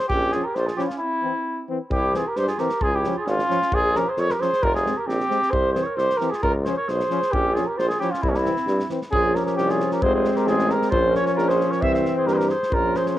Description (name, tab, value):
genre	balkan folk, Balkan brass band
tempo	133 BPM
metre	2/4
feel	straight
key	C phrygian dominant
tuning	A4 = 440 Hz
part	mellow flugelhorn	melody	0.0-13.2 s	Db4 to E5	-23 LUFS	equal	cassette tape
part	warm clarinet	second line	0.0-13.2 s	Bb3 to C5	-32 LUFS	right 6 dB	cassette tape
part	clear tuba	bass	0.1-13.2 s	F1 to G2	-24 LUFS	equal	none
part	natural country drum kit	percussion	0.1-13.2 s	kick drum, snare drum	-31 LUFS	equal	cassette tape
part	clear trombone	accompaniment	0.3-13.2 s	C4 to Db4	-28 LUFS	left 7 dB	cassette tape
part	warm euphonium	accompaniment	0.3-13.2 s	E3 to Ab3	-28 LUFS	right 5 dB	cassette tape
room	light reverb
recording	home recording on cassette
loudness	-19 LUFS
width	side -13 dB against mid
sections	0.0-1.9 A section; 1.9-9.1 A section; 9.1-13.2 B section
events	break 1.0-1.9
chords	0.1 Bbm; 1.0 C; 2.8 Db; 3.7 Bbm; 4.6 Fm; 5.5 C; 6.4 Db; 7.3 Bbm; 8.2 C; 9.1 Bbm; 10.0 Fm; 10.9 Bbm; 11.8 C